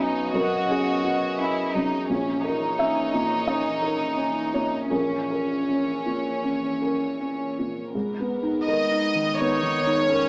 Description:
neoclassical piano and strings; 78-89 BPM; 4/4; rubato; A4 = 440 Hz
clear studio violin section; melody; 0.0-10.3 s; C#4 to D#5; -28 LUFS; equal
felt-muted upright piano; accompaniment; 0.0-10.3 s; A#1 to E5; -28 LUFS; equal
warm chamber string section; sustained chords; 0.0-10.3 s; E3 to D#5; -35 LUFS; equal
warm viola; accompaniment; 9.4-10.3 s; C#4 to D#4; -30 LUFS; equal
wet large studio reverb, RT60 1.4 s; small speaker sound; -25 LUFS; mono
0.0-7.9 A section; 7.9-10.3 A section
0.0 Badd9; 2.1 A#dim; 7.9 G#madd9
0.70 1.40 | 2.10 2.79 3.47 4.17 | 4.91 5.67 6.43 7.19 | 7.94 8.66 9.37 10.09

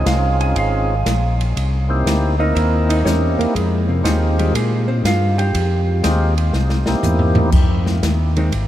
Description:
soul jazz organ trio; 120 BPM; 4/4; swing 68% on 8ths; F minor; A4 = 442 Hz
percussive tonewheel organ; melody; 0.0-7.5 s; Ab3 to Bb4; -22 LUFS; equal; slow rotary speaker
hollow-body jazz guitar; accompaniment; 0.0-8.5 s; C3 to Ab5; -23 LUFS; right 2 dB
tonewheel organ; bass; 0.0-8.7 s; Ab1 to Bb2; -17 LUFS; equal; overdrive, chorus vibrato
open jazz drum kit; drums; 0.1-8.7 s; crash cymbal, hi-hat, kick drum, ride cymbal, snare drum, toms; -22 LUFS; equal
moderate huge ambient reverb, RT60 8.1 s; in a vast, echoing space; -15 LUFS; side -12 dB against mid
0.0-7.5 A section; 7.5-8.7 A section
hollow-body jazz guitar solo 0.0-7.5; drum fill 6.5-7.5; tonewheel organ solo 7.5-8.7
0.0 Dbmaj7; 1.6 C7#9; 3.5 Fm7; 4.5 Bb5; 5.5 Fm7; 6.5 C7#9; 7.5 Fm7
0.06 0.56 1.06 | 1.56 2.05 2.55 3.05 | 3.55 4.05 4.54 5.04 | 5.54 6.04 6.54 7.04 | 7.54 8.03 8.53

